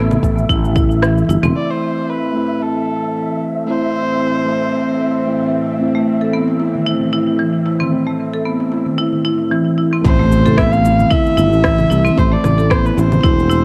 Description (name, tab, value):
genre	organic downtempo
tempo	113 BPM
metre	4/4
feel	swing 54% on 16ths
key	A minor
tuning	A4 = 440 Hz
part	bowed-like drone	sustained chords	0.2-10.0 s	A2 to A4	-28 LUFS	equal	built-in reverb, sidechain pumping, cassette tape
part	marimba with hard mallets	arpeggios	0.0-1.5, 5.9-13.6 s	E3 to A4	-21 LUFS	equal	cassette tape, analog delay
part	sustaining fretless electric bass	bass	0.0-1.5, 10.0-13.6 s	E1 to C2	-18 LUFS	equal	sidechain pumping
part	wind-like tuned noise texture	texture	0.0-10.1 s	E5	-30 LUFS	equal	built-in reverb, cassette tape
part	electronic congas, shaker and rim click	drums	0.1-1.5, 10.1-13.6 s	none	-24 LUFS	equal	cassette tape
part	darbuka	percussion	0.1-0.9, 6.5-13.2 s	none	-30 LUFS	equal	none
part	electronic kick drum	drums	0.2-0.9, 10.0-13.4 s	none	-19 LUFS	equal	cassette tape
part	muted felt-like synth keys	accompaniment	1.5-13.6 s	A3 to E4	-22 LUFS	equal	chorus, sidechain pumping, cassette tape
part	clear kamancheh	melody	1.6-5.5, 10.0-13.6 s	A4 to F5	-22 LUFS	equal	cassette tape, analog delay
part	impact	sound effects	10.0-12.2 s	none	-25 LUFS	equal	none
room	light reverb, digital ambience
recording	home recording on cassette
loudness	-16 LUFS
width	mono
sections	0.0-1.6 A section; 1.6-10.1 B section; 10.1-13.6 C section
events	kick drops out 1.0-1.6; impact 10.1-12.2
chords	0.0 A5; 1.6 Am